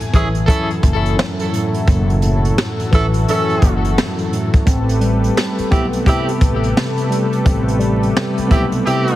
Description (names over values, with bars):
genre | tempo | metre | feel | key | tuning
hip hop, boom-bap hip-hop | 86 BPM | 4/4 | swing 62% on 16ths | unclear | A4 = 440 Hz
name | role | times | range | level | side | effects
mellow tine electric piano | accompaniment | 0.0-9.2 s | F#2 to C4 | -20 LUFS | equal | medium stereo tremolo, high-pass filter, low-pass filter
warm analog pad | sustained chords | 0.0-9.2 s | F#3 to G#5 | -23 LUFS | left 1 dB | wide subtle chorus, high-pass filter, low-pass filter
upright bass | bass | 0.0-8.8 s | F#1 to B1 | -19 LUFS | equal | none
jazz brush drum kit | drums | 0.0-9.2 s | hi-hat, kick drum, snare drum | -17 LUFS | equal | none
warm horn section | stabs | 0.1-9.2 s | C4 to A4 | -22 LUFS | equal | high-pass filter, low-pass filter, ping-pong delay
room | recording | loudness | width
light reverb, small room ambience | heavily compressed radio sound, vinyl crackle | -14 LUFS | side -14 dB against mid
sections
0.0-9.2 A section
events
none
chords
0.0 F#m9; 4.7 Am9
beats
0.48 1.18 | 1.88 2.57 3.27 3.97 | 4.67 5.36 6.06 6.76 | 7.46 8.15 8.85